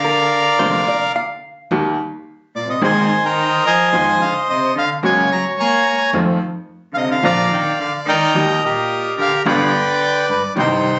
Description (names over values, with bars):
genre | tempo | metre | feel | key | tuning
tango | 108 BPM | 4/4 | rubato | Eb major | A4 = 440 Hz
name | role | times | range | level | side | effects
bandoneon | melody | 0.0-11.0 s | Eb4 to Db6 | -18 LUFS | equal | none
hollow-body jazz guitar | second line | 0.0-2.2 s | Bb4 to F5 | -26 LUFS | equal | none
warm cello | second line | 0.0-11.0 s | G2 to Bb3 | -26 LUFS | equal | none
bright upright piano | accompaniment | 0.6-11.0 s | F1 to Ab4 | -22 LUFS | equal | none
upright bass | bass | 0.6-11.0 s | F1 to F2 | -26 LUFS | equal | none
room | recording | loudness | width
moderate studio reverb, RT60 0.7 s | recorded on a phone in the room, club reverb, compression, nothing above 7.9 kHz | -17 LUFS | mono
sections
0.0-10.6 A section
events
none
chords
0.0 Bb; 1.7 Eb; 2.8 Abadd9; 3.9 Fm7; 5.0 Gbadd9; 6.1 F7; 7.2 Bbadd9; 8.3 Eb; 9.4 G7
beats
0.04 0.59 1.15 | 1.71 2.26 2.81 3.37 | 3.92 4.48 5.03 5.58 | 6.13 6.69 7.24 7.79 | 8.34 8.89 9.45 10.01 | 10.56